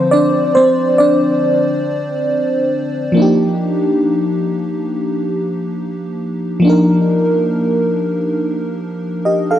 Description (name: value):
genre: R&B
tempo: 69 BPM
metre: 4/4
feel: swing 58% on 16ths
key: unclear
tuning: A4 = 440 Hz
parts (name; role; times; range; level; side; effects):
- FM electric piano with soft pad layer; solo; 0.0-9.6 s; D3 to F5; -13 LUFS; equal; chorus, tape echo
room: little or no reverb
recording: dry, gritty hardware recording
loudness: -13 LUFS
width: side -11 dB against mid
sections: 0.0-3.2 A section; 3.2-9.6 B section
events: FM electric piano solo 0.0-3.2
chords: 0.0 Dm7; 3.2 Ebmaj7